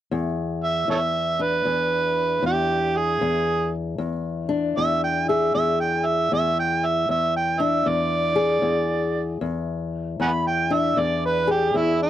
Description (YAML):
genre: acoustic country blues, solo or duo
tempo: 77 BPM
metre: 4/4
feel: swing 65% on 8ths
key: E mixolydian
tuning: A4 = 440 Hz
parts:
  - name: fingerpicked old ladder-braced acoustic guitar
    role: accompaniment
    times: 0.1-12.1 s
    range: E2 to G#4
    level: -24 LUFS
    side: left 4 dB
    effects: none
  - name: overdriven harmonica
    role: melody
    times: 0.6-12.1 s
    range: E4 to B5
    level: -22 LUFS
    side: right 3 dB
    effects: none
room: little or no reverb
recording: dry, close 1970s-style studio recording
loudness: -20 LUFS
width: side -12 dB against mid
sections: 0.1-12.1 A section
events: harmonica solo 0.1-12.1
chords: 0.1 E7